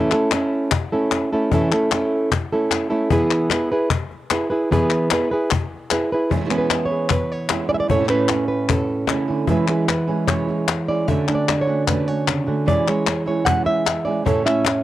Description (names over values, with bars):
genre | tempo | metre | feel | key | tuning
flamenco | 151 BPM | 4/4 | straight | unclear | A4 = 440 Hz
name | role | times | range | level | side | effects
flamenco guitar | melody | 0.0-14.8 s | A2 to F#5 | -19 LUFS | right 1 dB | cassette tape
cajon | percussion | 0.1-14.8 s | none | -24 LUFS | left 4 dB | none
palmas hand claps | percussion | 0.1-14.8 s | none | -23 LUFS | left 7 dB | none
flamenco guitar | stabs | 6.3-14.7 s | E2 to F#4 | -25 LUFS | right 6 dB | cassette tape
room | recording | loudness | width
light reverb, small room ambience | home recording on cassette | -18 LUFS | side -14 dB against mid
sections
0.0-6.3 A section; 6.3-14.8 B section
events
none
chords
0.0 A; 3.1 E; 6.3 E6; 7.9 A; 9.5 E6; 11.1 Dmaj7; 12.7 E6; 14.3 A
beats
0.32 0.72 1.12 | 1.52 1.92 2.31 2.71 | 3.11 3.51 3.91 4.30 | 4.70 5.10 5.50 5.90 | 6.30 6.69 7.09 7.49 | 7.89 8.29 8.69 9.09 | 9.48 9.88 10.28 10.68 | 11.08 11.47 11.87 12.27 | 12.67 13.07 13.46 13.86 | 14.26 14.66